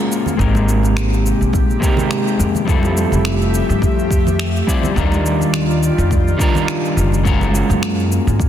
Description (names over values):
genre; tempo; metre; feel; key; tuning
sunset chillout; 105 BPM; 4/4; swing 55% on 16ths; Eb major; A4 = 440 Hz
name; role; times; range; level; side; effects
electric guitar at the edge of break-up; accompaniment; 0.0-8.5 s; G3 to D5; -20 LUFS; moving between left 5 dB and right 4 dB; auto-pan, low-pass filter, tape echo
airy breathy pad; sustained chords; 0.0-8.5 s; C3 to E5; -21 LUFS; left 2 dB; chorus
electronic shaker and finger snaps; drums; 0.1-8.5 s; none; -27 LUFS; left 1 dB; soft clipping on snare
congas; percussion; 0.3-7.8 s; none; -26 LUFS; right 3 dB; none
upright bass; bass; 0.4-8.5 s; F1 to G2; -17 LUFS; equal; none
electronic kick drum; drums; 0.4-8.5 s; none; -17 LUFS; equal; none
room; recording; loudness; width
light reverb; dense, heavily limited modern master; -14 LUFS; side -10 dB against mid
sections
0.0-8.5 A section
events
none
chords
0.4 Abmaj9; 2.7 Fmaj9; 5.0 Ebmaj9; 7.3 Gbmaj9